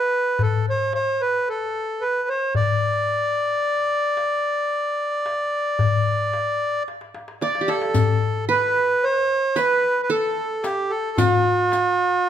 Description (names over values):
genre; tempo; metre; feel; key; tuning
Arabic maqam ensemble; 111 BPM (eighths); 10/8; straight; D maqam rast; A4 = 440 Hz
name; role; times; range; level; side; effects
accordion; melody; 0.0-12.3 s; F#4-50c to D5; -20 LUFS; right 1 dB; none
darbuka; percussion; 0.4-12.0 s; none; -24 LUFS; left 4 dB; none
qanun; second line; 7.4-12.3 s; F#4-50c to D5; -25 LUFS; right 2 dB; none
riq; percussion; 7.9-12.0 s; none; -31 LUFS; left 7 dB; none
room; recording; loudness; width
wet recital hall reverb, RT60 1.5 s; minimal, uncompressed stereo recording; -19 LUFS; side -9 dB against mid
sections
0.0-7.9 A section; 7.9-12.3 B section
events
drum fill 6.9-7.9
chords
none